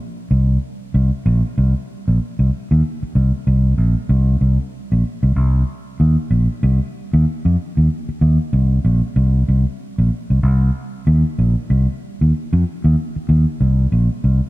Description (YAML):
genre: funk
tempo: 95 BPM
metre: 4/4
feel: swing 60% on 16ths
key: C minor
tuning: A4 = 440 Hz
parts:
  - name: fingered electric bass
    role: solo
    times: 0.3-14.4 s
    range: Bb1 to F2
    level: -15 LUFS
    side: equal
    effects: none
room: light reverb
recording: dark, warm production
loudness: -15 LUFS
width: side -18 dB against mid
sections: 0.0-14.2 A section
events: none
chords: none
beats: 0.30 0.93 | 1.56 2.20 2.83 3.46 | 4.10 4.73 5.36 6.00 | 6.63 7.26 7.89 8.53 | 9.16 9.80 10.43 11.06 | 11.70 12.33 12.96 13.60 | 14.23